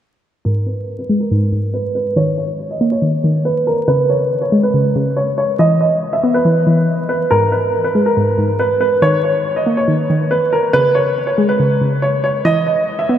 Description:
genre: hip hop, drill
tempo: 140 BPM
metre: 4/4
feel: half-time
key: unclear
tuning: A4 = 440 Hz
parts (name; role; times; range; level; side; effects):
- warm upright piano; melody; 0.5-13.2 s; A#4 to E5; -16 LUFS; right 1 dB; low-pass filter, diffuse ambient delay
- soft round pluck; accompaniment; 0.5-13.2 s; G#2 to B3; -16 LUFS; equal; chorus, low-pass filter
room: wet cathedral reverb, RT60 5.7 s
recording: dreamy mix soaked in reverb, vinyl crackle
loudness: -13 LUFS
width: side -10 dB against mid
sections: 0.5-13.2 A section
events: filter sweep 0.5-13.2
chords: 0.5 N.C.; 2.2 D#5; 3.9 C#5; 5.6 E5; 7.3 N.C.; 9.0 D#5; 10.7 C#5; 12.5 E5

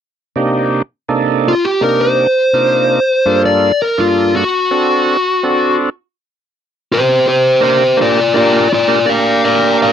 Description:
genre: blues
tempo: 83 BPM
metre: 4/4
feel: straight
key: G minor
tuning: A4 = 436 Hz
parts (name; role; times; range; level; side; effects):
- overdriven tonewheel organ; accompaniment; 0.4-9.9 s; G2 to Bb4; -14 LUFS; right 3 dB; slow rotary speaker
- smooth overdriven lead guitar; melody; 1.5-9.9 s; F4 to F5; -12 LUFS; left 2 dB; slapback echo
room: little or no reverb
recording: dry, close 1970s-style studio recording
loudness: -11 LUFS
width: side -9 dB against mid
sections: 0.4-6.2 A section; 6.2-9.9 B section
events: lead electric guitar solo 6.2-9.9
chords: 0.4 Cm7; 3.3 Gm7; 4.7 D7; 6.2 Gm

